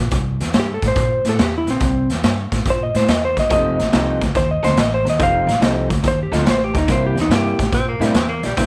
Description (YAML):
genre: electric blues shuffle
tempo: 142 BPM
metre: 4/4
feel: swing 68% on 8ths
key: unclear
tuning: A4 = 440 Hz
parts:
  - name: upright bass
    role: bass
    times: 0.0-8.7 s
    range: F1 to Bb2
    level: -24 LUFS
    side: equal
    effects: none
  - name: raw garage drum kit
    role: drums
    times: 0.1-8.7 s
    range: hi-hat, kick drum, snare drum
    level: -22 LUFS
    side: equal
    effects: none
  - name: clean lap steel guitar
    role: melody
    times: 0.6-7.7 s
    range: C4 to F5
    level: -22 LUFS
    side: equal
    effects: none
  - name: dark upright piano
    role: accompaniment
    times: 3.5-8.7 s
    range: A3 to G4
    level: -30 LUFS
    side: equal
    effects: none
  - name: electric guitar through a small old amp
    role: riff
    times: 3.5-8.7 s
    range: C3 to A4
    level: -25 LUFS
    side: equal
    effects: lush chorus
  - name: clear tenor saxophone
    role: second line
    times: 7.7-8.7 s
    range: G3 to C4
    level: -25 LUFS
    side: equal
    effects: tape echo
room: moderate spring reverb, RT60 1.0 s, small room ambience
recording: none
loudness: -18 LUFS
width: mono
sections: 0.0-8.7 A section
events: none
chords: 0.0 C7; 3.5 F7; 6.9 C7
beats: | 0.12 0.54 0.96 1.39 | 1.81 2.23 2.65 3.08 | 3.50 3.92 4.35 4.77 | 5.19 5.61 6.04 6.46 | 6.88 7.30 7.73 8.15 | 8.57